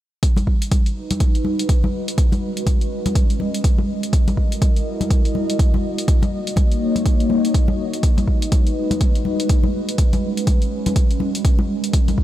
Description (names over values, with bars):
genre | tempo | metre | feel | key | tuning
deep house | 123 BPM | 4/4 | swing 60% on 16ths | G# minor | A4 = 439 Hz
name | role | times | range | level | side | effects
warbly tape-like pad | sustained chords | 1.0-12.2 s | G#3 to D#5 | -24 LUFS | equal | chorus, built-in reverb, sidechain pumping
electronic hi-hat | drums | 0.2-12.2 s | none | -31 LUFS | left 1 dB | overdrive
electronic kick drum | drums | 0.2-12.2 s | none | -16 LUFS | equal | overdrive
congas | percussion | 0.4-12.2 s | none | -26 LUFS | left 2 dB | none
room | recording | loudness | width
light reverb, digital ambience | none | -16 LUFS | side -13 dB against mid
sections
0.2-12.2 A section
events
none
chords
0.2 G#m7; 2.2 C#9sus4; 3.9 F#13; 6.1 D#m7; 8.0 G#m7; 10.0 C#9sus4; 11.7 F#13